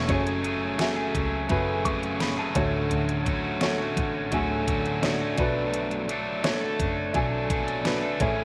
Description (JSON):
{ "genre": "piano-driven pop", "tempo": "85 BPM", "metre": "4/4", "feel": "straight", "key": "F# minor", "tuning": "A4 = 440 Hz", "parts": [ { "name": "warm grand piano", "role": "accompaniment", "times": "0.0-8.4 s", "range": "A2 to C#6", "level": "-30 LUFS", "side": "equal", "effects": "none" }, { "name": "crunchy overdriven guitar", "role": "riff", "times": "0.0-8.4 s", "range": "F#2 to A4", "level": "-32 LUFS", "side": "equal", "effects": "none" }, { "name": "warm double bass", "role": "bass", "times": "0.0-8.4 s", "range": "F#1 to D2", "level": "-36 LUFS", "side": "equal", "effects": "none" }, { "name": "pop drum kit", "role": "drums", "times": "0.1-8.4 s", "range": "hi-hat, kick drum, snare drum", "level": "-33 LUFS", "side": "equal", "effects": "overdrive" } ], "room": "moderate echo chamber reverb, RT60 2.0 s", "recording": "none", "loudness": "-26 LUFS", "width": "mono", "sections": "0.1-8.4 A section", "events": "none", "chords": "0.1 F#madd9; 2.6 Dmaj7; 5.4 Bm7", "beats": "| 0.09 0.79 1.50 2.21 | 2.91 3.62 4.32 5.03 | 5.74 6.44 7.15 7.85" }